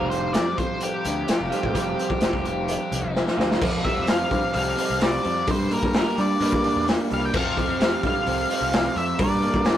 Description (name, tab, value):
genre	indie rock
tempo	129 BPM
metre	4/4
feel	straight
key	unclear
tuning	A4 = 440 Hz
part	octave-fuzz lead guitar	melody	0.0-9.8 s	G4 to G5	-27 LUFS	left 1 dB	distortion
part	biting overdriven guitar	riff	0.0-9.8 s	F3 to Bb4	-32 LUFS	left 4 dB	phaser
part	electric guitar through a small old amp	riff	0.0-9.8 s	F3 to G4	-27 LUFS	right 3 dB	none
part	fuzz picked electric bass	bass	0.0-9.7 s	F1 to G3	-29 LUFS	left 1 dB	overdrive
part	raw garage drum kit	drums	0.1-9.8 s	crash cymbal, hi-hat, kick drum, snare drum	-24 LUFS	left 1 dB	none
room	light reverb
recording	rough rehearsal-room recording, tube saturation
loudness	-20 LUFS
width	side -11 dB against mid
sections	0.0-3.6 A section; 3.6-9.8 B section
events	drum fill 3.2-3.6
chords	0.0 Fsus2; 5.5 Gm; 7.3 Fsus2; 9.2 Gm